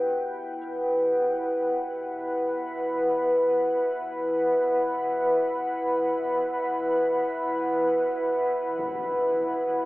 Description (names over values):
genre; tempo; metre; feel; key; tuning
dark ambient drone; free time; none; none; unclear; A4 = 440 Hz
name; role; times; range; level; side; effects
deep dark ambient pad; sustained chords; 0.0-9.9 s; E4 to B5; -23 LUFS; equal; chorus, built-in reverb
dark detuned synth bell; arpeggios; 0.0-9.9 s; B3; -58 LUFS; equal; none
swarming drone; drone; 0.0-9.9 s; E2 to B2; -50 LUFS; equal; built-in reverb
bronze singing bowl; texture; 0.0-9.9 s; G4; -52 LUFS; equal; none
impact; percussion; 8.8-9.0 s; none; -43 LUFS; equal; low-pass filter on sfx
room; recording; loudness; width
moderate plate reverb, RT60 2.4 s; dreamy mix soaked in reverb, telephone sound; -23 LUFS; side -19 dB against mid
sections
0.0-9.9 A section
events
fade-in on synth drone 0.0-9.9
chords
0.0 Emadd9